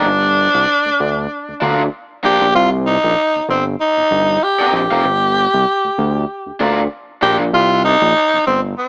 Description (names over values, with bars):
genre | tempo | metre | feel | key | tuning
funk | 96 BPM | 4/4 | swing 56% on 16ths | C minor | A4 = 439 Hz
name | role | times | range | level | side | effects
raspy tenor saxophone | melody | 0.0-8.9 s | C4 to G4 | -16 LUFS | equal | none
raw garage guitar | accompaniment | 0.0-7.4 s | C4 to F5 | -22 LUFS | equal | overdrive
fat analog bass | bass | 0.0-8.7 s | F1 to D2 | -22 LUFS | equal | none
room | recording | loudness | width
light reverb, studio ambience | small speaker sound | -16 LUFS | mono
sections
0.0-8.9 A section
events
none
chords
0.1 Gm7; 2.5 Cm7; 5.0 Gm7; 7.5 Cm7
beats
| 0.06 0.68 1.30 1.92 | 2.55 3.17 3.79 4.42 | 5.04 5.66 6.29 6.91 | 7.53 8.16 8.78